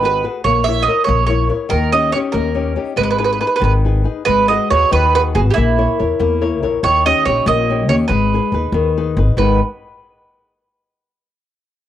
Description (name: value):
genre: italian folk, Italian serenade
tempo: 94 BPM (dotted quarters)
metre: 6/8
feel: rubato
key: G# harmonic minor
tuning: A4 = 441 Hz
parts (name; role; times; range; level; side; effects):
- mandolin; melody; 0.0-9.6 s; E4 to E5; -16 LUFS; right 6 dB; cassette tape
- flamenco guitar; accompaniment; 0.0-9.6 s; G#2 to C#5; -19 LUFS; left 7 dB; cassette tape
- upright bass; bass; 0.0-9.6 s; G#1 to E2; -18 LUFS; left 1 dB; tube saturation
room: light reverb, studio ambience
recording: home recording on cassette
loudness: -13 LUFS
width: side -11 dB against mid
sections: 0.0-4.3 A section; 4.3-9.4 B section; 9.4-10.7 C section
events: none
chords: 0.4 A#dim; 1.7 D#7; 3.0 G#m; 4.3 G#m7; 5.6 A#dim; 6.8 D#7; 8.1 G#m